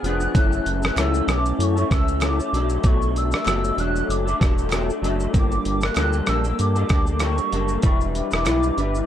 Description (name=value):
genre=indie pop, bedroom pop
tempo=96 BPM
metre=4/4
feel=swing 55% on 16ths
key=unclear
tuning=A4 = 438 Hz
part: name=warbly nostalgic lead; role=melody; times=0.0-9.1 s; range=C#6 to F#6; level=-27 LUFS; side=right 1 dB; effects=analog chorus, analog delay, plate reverb
part: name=electric guitar through a small old amp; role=accompaniment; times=0.0-9.1 s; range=F#2 to B4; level=-24 LUFS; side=left 2 dB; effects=ensemble chorus, warbly pitch drift, plate reverb
part: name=round analog bass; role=bass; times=0.0-9.0 s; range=E1 to G2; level=-24 LUFS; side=equal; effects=none
part: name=dusty soul sampler-style drum kit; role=drums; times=0.0-9.1 s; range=hi-hat, kick drum, rim click, shaker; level=-22 LUFS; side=equal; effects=none
part: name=group handclap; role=percussion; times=1.0-8.6 s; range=none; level=-37 LUFS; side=right 16 dB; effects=none
room=light reverb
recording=dark, warm production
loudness=-18 LUFS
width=side -10 dB against mid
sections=0.0-9.1 A section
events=none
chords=0.4 F#m7; 2.5 Bm7; 5.3 Gmadd9; 7.8 Em7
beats=| 0.35 0.98 1.60 2.23 | 2.85 3.47 4.10 4.72 | 5.35 5.97 6.59 7.22 | 7.84 8.47